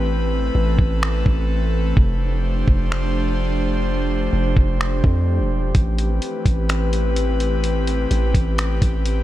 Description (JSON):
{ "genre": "hip hop, atmospheric cloud-rap", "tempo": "127 BPM", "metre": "4/4", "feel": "half-time", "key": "A minor", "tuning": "A4 = 440 Hz", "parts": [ { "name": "airy breathy pad", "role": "sustained chords", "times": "0.0-9.2 s", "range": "E3 to C5", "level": "-23 LUFS", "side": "left 1 dB", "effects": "chorus, sidechain pumping" }, { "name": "Celtic harp", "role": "arpeggios", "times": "0.0-0.8 s", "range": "none", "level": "barely audible", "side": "none", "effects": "none" }, { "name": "long sustained 808-style bass", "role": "bass", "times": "0.0-9.2 s", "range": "E1 to F2", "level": "-20 LUFS", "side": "equal", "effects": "none" }, { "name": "dusty soul sampler-style drum kit", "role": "drums", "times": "0.8-9.2 s", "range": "finger snaps, hi-hat, kick drum", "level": "-19 LUFS", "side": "equal", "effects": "none" } ], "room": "little or no reverb", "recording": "none", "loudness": "-17 LUFS", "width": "side -14 dB against mid", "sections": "0.0-9.2 A section", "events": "break 0.0-5.7", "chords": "0.0 Amadd9; 2.0 F69; 5.7 Am9" }